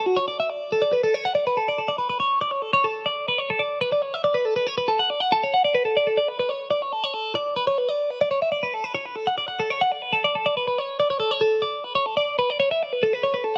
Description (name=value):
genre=rock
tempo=140 BPM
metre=5/4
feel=straight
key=unclear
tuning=A4 = 439 Hz
part: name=twelve-string electric guitar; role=solo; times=0.0-13.6 s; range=F#4 to F#5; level=-23 LUFS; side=equal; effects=phaser
room=moderate echo chamber reverb, RT60 1.6 s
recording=none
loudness=-23 LUFS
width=mono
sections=0.0-1.0 A section; 1.0-13.6 B section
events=none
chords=none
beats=0.18 0.61 | 1.04 1.46 1.89 2.32 2.75 | 3.18 3.61 4.04 4.46 4.89 | 5.32 5.75 6.18 6.61 7.04 | 7.46 7.89 8.32 8.75 9.18 | 9.60 10.03 10.46 10.89 11.32 | 11.74 12.17 12.60 13.03 13.45